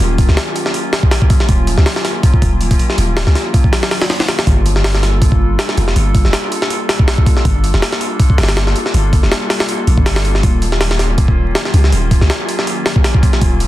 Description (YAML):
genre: drum and bass, jungle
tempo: 161 BPM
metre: 4/4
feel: swing 55% on 16ths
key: unclear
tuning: A4 = 440 Hz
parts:
  - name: long sustained 808-style bass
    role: bass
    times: 0.0-13.7 s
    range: Eb1 to Db2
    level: -14 LUFS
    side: equal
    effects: none
  - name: jungle sampler-style drum kit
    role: drums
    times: 0.0-13.7 s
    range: hi-hat, kick drum, snare drum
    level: -13 LUFS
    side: equal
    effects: none
room: little or no reverb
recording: dense, heavily limited modern master, vinyl crackle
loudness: -11 LUFS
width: side -15 dB against mid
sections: 0.0-13.7 A section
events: none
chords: none